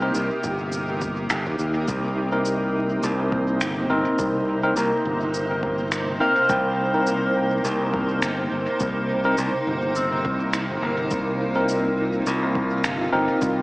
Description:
ambient dub; 104 BPM; 4/4; swing 56% on 16ths; C minor; A4 = 442 Hz
granular cloud pad; sustained chords; 0.0-13.6 s; C3 to C5; -27 LUFS; right 1 dB; built-in reverb
concert harp; arpeggios; 0.0-13.6 s; Bb3 to G5; -28 LUFS; equal; dub echo
tine electric piano; stabs; 0.0-13.6 s; C4 to Bb4; -26 LUFS; left 1 dB; dub echo
modern bright fingered electric bass; bass; 0.0-13.6 s; G1 to Eb2; -26 LUFS; equal
electronic cabasa and finger snaps; drums; 0.1-13.5 s; -30 LUFS; equal; dub echo
electronic kick drum; drums; 0.4-13.5 s; -34 LUFS; equal
bubbling stepped-filter texture; texture; 3.0-13.6 s; Bb3 to Bb4; -34 LUFS; equal
moderate concert hall reverb, RT60 2.5 s; vinyl crackle, small speaker sound; -20 LUFS; side -22 dB against mid
0.0-13.6 A section
0.0 Cm7
0.15 0.73 1.30 | 1.88 2.46 3.03 3.61 | 4.19 4.76 5.34 5.92 | 6.50 7.07 7.65 8.23 | 8.80 9.38 9.96 10.53 | 11.11 11.69 12.27 12.84 | 13.42

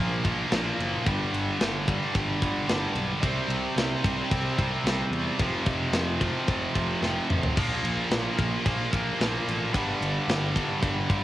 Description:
hard rock; 111 BPM; 4/4; straight; A4 = 440 Hz
heavy high-gain guitar; riff; 0.0-11.2 s; F2 to C4; -32 LUFS; left 6 dB; distortion, cassette tape
heavy high-gain guitar; riff; 0.0-11.2 s; F2 to C4; -31 LUFS; equal; distortion, cassette tape
scooped high-gain guitar; riff; 0.0-11.2 s; F2 to C4; -31 LUFS; right 5 dB; distortion, cassette tape
fuzz picked electric bass; bass; 0.0-11.2 s; F1 to E2; -33 LUFS; equal; overdrive
tight metal drum kit; drums; 0.2-11.2 s; crash cymbal, kick drum, ride cymbal, snare drum, toms; -29 LUFS; equal
moderate booth ambience, RT60 0.2 s; home recording on cassette; -24 LUFS; side -14 dB against mid
0.0-11.2 A section
drum fill 7.0-7.6
0.0 Bb5; 1.1 G5; 3.2 C5; 5.4 F5; 7.6 Bb5; 9.7 G5
0.53 | 1.07 1.61 2.15 2.69 | 3.23 3.78 4.32 4.86 | 5.40 5.95 6.49 7.03 | 7.57 8.11 8.65 9.20 | 9.74 10.28 10.82

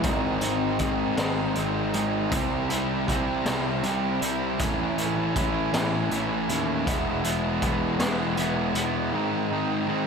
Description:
quiet-loud alternative rock; 53 BPM (dotted quarters); 6/8; straight; A4 = 442 Hz
picked steel-string acoustic guitar; arpeggios; 0.0-2.3 s; Ab2 to Eb4; -33 LUFS; left 4 dB
raw garage guitar; riff; 0.0-10.1 s; Ab2 to E4; -28 LUFS; right 9 dB; overdrive
thick fuzz guitar; riff; 0.0-10.1 s; Ab2 to E4; -28 LUFS; left 11 dB; distortion
fuzz picked electric bass; bass; 0.0-9.1 s; E1 to Eb2; -32 LUFS; equal; overdrive
raw garage drum kit; drums; 0.0-8.9 s; hi-hat, kick drum, snare drum; -30 LUFS; equal
moderate lush hall reverb, RT60 2.4 s; big arena sound; -23 LUFS; side -5 dB against mid
0.0-10.1 A section
0.0 Ab; 2.3 C; 4.6 A; 6.9 E; 9.1 Ab
| 0.04 1.18 | 2.32 3.46 | 4.59 5.73 | 6.87 8.00 | 9.13

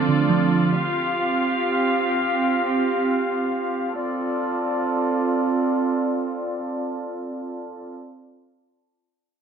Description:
hip hop; free time; D minor; A4 = 440 Hz
glassy digital keys; accompaniment; 0.0-0.7 s; D3 to D4; -20 LUFS; right 7 dB; chorus, low-pass filter
warm chamber string section; sustained chords; 0.0-7.9 s; C4 to F5; -22 LUFS; right 1 dB; low-pass filter
semi-hollow electric guitar; arpeggios; 0.0-0.7 s; D3 to C6; -30 LUFS; left 5 dB; lush chorus, low-pass filter, tape echo
light reverb; dense, heavily limited modern master; -20 LUFS; side -7 dB against mid
0.0-4.0 A section; 4.0-7.3 B section
0.0 Dm7; 0.7 Csus4; 4.0 Dm7
free time

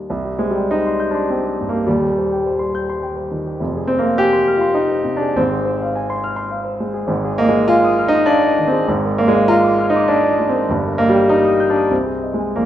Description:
classical, romantic character piece for solo piano; 102 BPM; 3/4; rubato; C minor, Eb major from 7.1 s; A4 = 436 Hz
warm grand piano; solo; 0.0-12.7 s; Eb1 to G6; -15 LUFS; equal
moderate large studio reverb, RT60 1.4 s; -15 LUFS; side -11 dB against mid
0.1-12.7 A section
0.1 C5; 1.9 Cm/Eb; 3.6 Fm; 5.4 Fm/Ab; 7.1 Fm7/Ab; 10.7 Eb/G; 11.9 Ab/C
| 0.10 0.69 1.28 | 1.87 2.45 3.03 | 3.62 4.20 4.78 | 5.36 5.94 6.52 | 7.10 7.68 8.27 | 8.87 9.47 10.07 | 10.68 11.30 11.92 | 12.58

